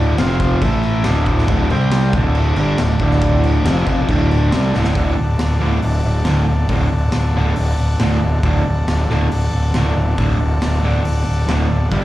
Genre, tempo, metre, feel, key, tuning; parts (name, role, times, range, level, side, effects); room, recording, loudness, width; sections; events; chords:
garage rock duo or trio; 138 BPM; 4/4; straight; D mixolydian, D major from 5.0 s; A4 = 441 Hz
combo organ; sustained chords; 0.0-12.0 s; E4 to G5; -26 LUFS; left 2 dB
fuzz guitar; riff; 0.0-12.0 s; D2 to C4; -19 LUFS; equal; distortion, slapback echo
fuzz fingered electric bass; bass; 0.0-12.0 s; D1 to C2; -17 LUFS; equal; overdrive
raw garage drum kit; drums; 0.2-12.0 s; crash cymbal, hi-hat, kick drum, snare drum; -22 LUFS; equal
small room ambience; live gig heard through the venue's PA, cassette tape, club reverb, faint mains hum; -14 LUFS; side -15 dB against mid
0.0-5.0 A section; 5.0-12.0 B section
transistor combo organ fill 0.8-1.5; drum fill 4.7
0.2 F5; 0.6 A5; 1.1 D; 1.7 C5; 2.1 D